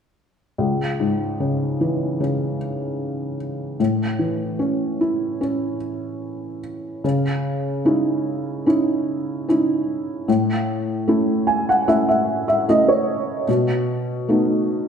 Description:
pop; 75 BPM; 4/4; straight; C# minor; A4 = 440 Hz
felt-muted upright piano; accompaniment; 0.6-14.9 s; C#2 to G#5; -19 LUFS; equal
wet recital hall reverb, RT60 1.5 s; -19 LUFS; side -7 dB against mid
0.6-7.0 A section; 7.0-14.9 B section
felt piano fill 11.1-13.5
0.6 C#m; 3.8 A; 7.0 C#madd9; 10.3 A; 13.5 B7

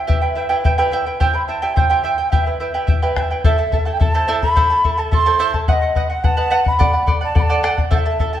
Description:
andean folk, Andean ensemble; 107 BPM; 2/4; straight; A4 = 442 Hz
large quena; melody; 0.0-8.4 s; D#5 to C6; -20 LUFS; right 1 dB
charango; accompaniment; 0.0-8.4 s; E4 to A5; -20 LUFS; right 2 dB
bombo; percussion; 0.1-8.3 s; -18 LUFS; left 2 dB
moderate concert hall reverb, RT60 1.7 s; close, detailed microphones; -14 LUFS; side -11 dB against mid
0.0-3.4 A section; 3.4-8.4 B section
0.1 Em; 1.2 C; 2.3 Em; 3.4 Am; 5.7 B; 6.8 D

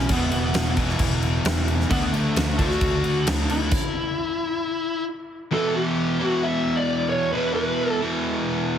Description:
hard rock; 133 BPM; 4/4; straight; E minor; A4 = 439 Hz
bluesy overdriven lead guitar; melody; 0.0-8.0 s; A3 to E5; -25 LUFS; left 1 dB; distortion, analog delay
cranked stack guitar; riff; 0.0-8.8 s; E2 to D4; -24 LUFS; equal; overdrive
overdriven picked electric bass; bass; 0.0-3.7 s; E1 to D2; -25 LUFS; equal
huge arena drum kit; drums; 0.1-3.8 s; crash cymbal, kick drum, snare drum; -25 LUFS; equal
light reverb, small room ambience; heavily compressed radio sound, multiband compression; -20 LUFS; side -9 dB against mid
0.0-5.5 A section; 5.5-8.8 A section
stop 3.7-5.5
0.0 E5; 1.9 D; 3.7 N.C.; 5.5 Em

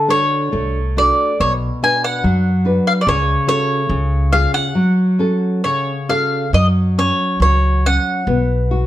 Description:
fado-style ballad; 66-74 BPM; 2/4; rubato; F# harmonic minor; A4 = 438 Hz
mandolin; melody; 0.0-8.9 s; C#5 to G#5; -18 LUFS; equal; plate reverb
nylon-string guitar; accompaniment; 0.0-8.9 s; B2 to B4; -18 LUFS; equal
upright bass; bass; 0.5-8.8 s; B1 to F#2; -17 LUFS; equal
moderate studio reverb, RT60 0.6 s; -14 LUFS; side -13 dB against mid
0.0-6.5 A section; 6.5-8.9 B section
0.0 D; 1.4 Bm; 3.1 F#m/C#; 3.9 C#; 4.7 F#m; 6.5 F#5; 8.3 B5

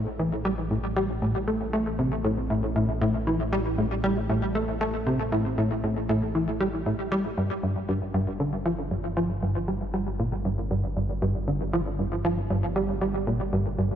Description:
ambient, sequencer-driven space music; 117 BPM; 4/4; straight; A4 = 442 Hz
tight sequencer bass; riff; 0.0-13.9 s; G2 to A3; -25 LUFS; equal; lush chorus, tape echo
fat analog bass; bass; 0.0-14.0 s; G1 to A1; -32 LUFS; equal
moderate lush hall reverb, RT60 3.0 s; lossy compression artefacts; -24 LUFS; side -9 dB against mid
0.0-14.0 A section
0.0 A7(no3); 7.4 G7(no3)

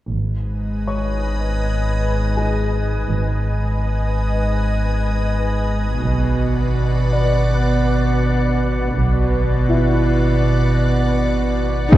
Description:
cinematic, suspense film score; 82 BPM; 4/4; straight; A4 = 441 Hz
soft additive organ-like pad; sustained chords; 0.7-12.0 s; B4 to G#5; -24 LUFS; left 1 dB; ensemble chorus, built-in reverb
rich symphonic double bass section; bass; 0.1-12.0 s; G#1 to B1; -23 LUFS; right 2 dB
warm symphonic cello section; bass; 0.1-12.0 s; G#2 to B2; -20 LUFS; right 2 dB
warm sub bass; drone; 0.1-12.0 s; G#1; -22 LUFS; left 1 dB
dark concert grand piano; texture; 0.9-12.0 s; E4 to C#6; -27 LUFS; left 2 dB
dark studio violin section; melody; 11.9-12.0 s; B4; -31 LUFS; left 10 dB
warm studio viola section; accompaniment; 11.9-12.0 s; D#4 to G#4; -17 LUFS; equal
impact; sound effects; 11.9-12.0 s; -6 LUFS; left 1 dB
wet scoring stage reverb, RT60 1.6 s; dark, warm production; -16 LUFS; side -14 dB against mid
0.1-11.9 A section
0.1 G#m; 6.0 Bm

